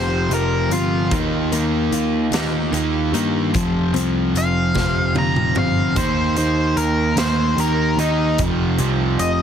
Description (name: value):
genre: quiet-loud alternative rock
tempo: 50 BPM (dotted quarters)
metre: 6/8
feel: straight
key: unclear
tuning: A4 = 440 Hz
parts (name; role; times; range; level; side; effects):
- octave-fuzz lead guitar; melody; 0.0-9.4 s; Eb4 to Bb5; -22 LUFS; left 2 dB; distortion, digital delay
- picked steel-string acoustic guitar; arpeggios; 0.0-6.0 s; Eb3 to G4; -26 LUFS; left 10 dB; none
- crunchy overdriven guitar; riff; 0.0-9.4 s; F2 to Eb4; -21 LUFS; right 2 dB; none
- picked electric bass; bass; 0.0-9.4 s; F1 to G2; -22 LUFS; equal; none
- big rock drum kit; drums; 0.3-9.4 s; hi-hat, kick drum, snare drum, toms; -25 LUFS; equal; none
room: light reverb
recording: heavily compressed radio sound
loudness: -16 LUFS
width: side -8 dB against mid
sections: 0.0-9.4 A section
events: lead electric guitar solo 0.0-9.4; drum fill 4.8-6.0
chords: 0.0 Fsus2; 1.1 Ebadd9; 3.5 Fsus2; 6.0 Eb5; 8.4 F5